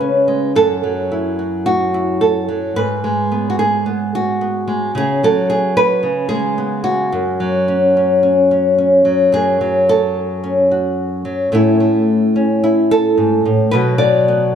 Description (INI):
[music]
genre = folk, solo fingerstyle acoustic guitar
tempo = 109 BPM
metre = 4/4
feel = straight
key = F# minor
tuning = A4 = 441 Hz
[part]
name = nylon-string guitar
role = solo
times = 0.0-14.6 s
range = F#2 to D5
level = -13 LUFS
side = equal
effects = none
[sound]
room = moderate concert hall reverb, RT60 2.0 s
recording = dark, warm production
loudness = -13 LUFS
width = side -8 dB against mid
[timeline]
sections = 0.0-9.3 A section; 9.3-14.6 A section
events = none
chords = 0.0 C#5; 0.5 F#m7; 2.7 G#m7; 4.9 C#7sus4; 6.0 C#5; 7.1 F#5; 11.5 A; 13.7 Bm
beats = | 0.55 1.10 1.65 2.20 | 2.75 3.29 3.84 4.38 | 4.93 5.48 6.02 6.57 | 7.12 7.67 8.22 8.77 | 9.33 9.88 10.43 10.98 | 11.53 12.08 12.62 13.17 | 13.72 14.26